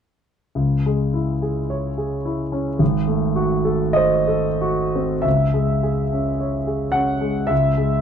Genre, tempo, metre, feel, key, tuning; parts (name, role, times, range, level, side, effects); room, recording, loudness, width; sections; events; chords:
classical, romantic nocturne for solo piano; 42-56 BPM; 4/4; rubato; C# minor; A4 = 440 Hz
warm grand piano; solo; 0.6-8.0 s; G#1 to F#5; -18 LUFS; equal
light reverb; dark, warm production; -18 LUFS; side -8 dB against mid
0.6-5.3 A section; 5.3-8.0 B section
0.6 C#m; 2.8 G#7b9; 5.3 C#m